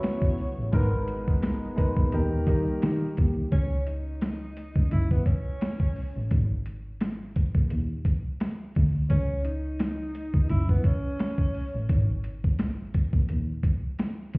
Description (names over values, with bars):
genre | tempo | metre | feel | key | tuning
hip hop, boom-bap hip-hop | 86 BPM | 4/4 | swing 56% on 16ths | unclear | A4 = 440 Hz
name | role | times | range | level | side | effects
breathy tenor saxophone | melody | 0.0-11.9 s | B3 to C#5 | -35 LUFS | equal | high-pass filter, low-pass filter, ping-pong delay
warm upright piano | accompaniment | 0.0-3.1 s | D#3 to B4 | -30 LUFS | equal | high-pass filter, low-pass filter
warm analog pad | sustained chords | 0.0-3.5 s | B2 to G4 | -36 LUFS | equal | chorus, high-pass filter, low-pass filter
boom bap sampler-style drum kit | drums | 0.0-14.4 s | hi-hat, kick drum, snare drum | -25 LUFS | equal | none
tube shaker | percussion | 0.0-3.4 s | none | -76 LUFS | left 3 dB | none
dark double bass | bass | 0.6-14.4 s | F#1 to D#3 | -28 LUFS | equal | none
warm horn section | stabs | 0.7-1.0 s | D#3 to A#4 | -40 LUFS | left 1 dB | high-pass filter, low-pass filter, ping-pong delay
room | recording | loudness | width
small room ambience | heard muffled through a wall, stone room reverb, vinyl crackle, EQ | -24 LUFS | side -29 dB against mid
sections
0.0-3.5 A section; 3.5-14.4 B section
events
none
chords
0.0 F#7sus4; 0.7 G#madd9; 2.1 D#; 3.5 C#sus2; 4.9 F#5; 6.3 N.C.; 9.1 C#sus2; 10.5 F#5; 11.9 N.C.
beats
0.03 | 0.73 1.43 2.13 2.82 | 3.52 4.22 4.92 5.62 | 6.31 7.01 7.71 8.41 | 9.10 9.80 10.50 11.20 | 11.89 12.59 13.29 13.99